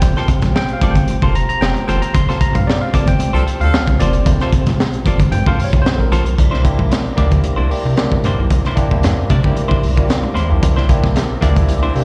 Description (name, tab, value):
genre	funk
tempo	113 BPM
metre	4/4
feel	straight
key	unclear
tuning	A4 = 440 Hz
part	clean electric guitar	accompaniment	0.0-12.0 s	Bb3 to D5	-26 LUFS	equal	plate reverb, slapback echo
part	percussive tonewheel organ	sustained chords	0.0-12.0 s	C4 to Bb5	-31 LUFS	equal	fast rotary speaker, overdrive, chorus vibrato, plate reverb
part	barky tine electric piano	stabs	0.0-12.0 s	F3 to C6	-25 LUFS	equal	subtle chorus, plate reverb, slapback echo
part	rubbery square bass	bass	0.0-12.0 s	F1 to C3	-19 LUFS	equal	none
part	crunchy breakbeat drum kit	drums	0.0-12.0 s	hi-hat, kick drum, snare drum	-18 LUFS	equal	none
part	congas	percussion	0.2-11.9 s	none	-28 LUFS	equal	slapback echo
part	warm horn section	second line	3.3-3.8, 11.7-12.0 s	E3 to A4	-29 LUFS	equal	plate reverb, slapback echo
room	little or no reverb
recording	live gig heard through the venue's PA, recital hall reverb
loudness	-15 LUFS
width	mono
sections	0.0-6.4 A section; 6.4-12.0 B section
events	tine electric piano solo 0.0-6.4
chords	0.0 Gm11; 6.4 C9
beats	| 0.03 0.55 1.08 1.61 | 2.14 2.67 3.20 3.73 | 4.26 4.79 5.32 5.85 | 6.38 6.91 7.45 7.98 | 8.51 9.04 9.57 10.10 | 10.63 11.16 11.69